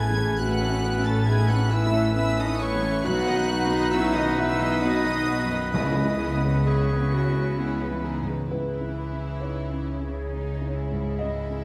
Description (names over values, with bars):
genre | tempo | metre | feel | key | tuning
cinematic | 67 BPM | 3/4 | rubato | C# minor | A4 = 440 Hz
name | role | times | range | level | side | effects
warm symphonic violin section | melody | 0.0-11.6 s | G#4 to A6 | -38 LUFS | equal | none
large flute ensemble | second line | 0.0-11.6 s | B4 to A5 | -36 LUFS | equal | none
mellow clarinet | second line | 0.0-8.5 s | C#4 to G#4 | -34 LUFS | equal | none
warm oboe | second line | 0.0-8.2 s | B4 | -35 LUFS | equal | none
warm symphonic violin section | second line | 0.0-11.6 s | C#4 to D#5 | -38 LUFS | equal | none
felt-muted upright piano | accompaniment | 0.0-11.6 s | B1 to D#5 | -34 LUFS | equal | none
warm studio viola section | accompaniment | 0.0-11.6 s | D#3 to B3 | -37 LUFS | equal | none
mellow French horn section | sustained chords | 0.0-11.6 s | E3 to D#5 | -34 LUFS | equal | none
dark symphonic double bass section | bass | 0.0-11.6 s | A1 to C#2 | -32 LUFS | equal | none
warm symphonic cello section | bass | 0.0-11.6 s | A2 to C#3 | -32 LUFS | equal | none
timpani | percussion | 5.7-7.1 s | C#3 | -34 LUFS | equal | none
room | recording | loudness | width
wet scoring stage reverb, RT60 2.0 s | none | -25 LUFS | mono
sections
0.0-8.5 A section; 8.5-11.6 A section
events
none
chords
0.0 Aadd9; 3.1 B; 5.8 C#m7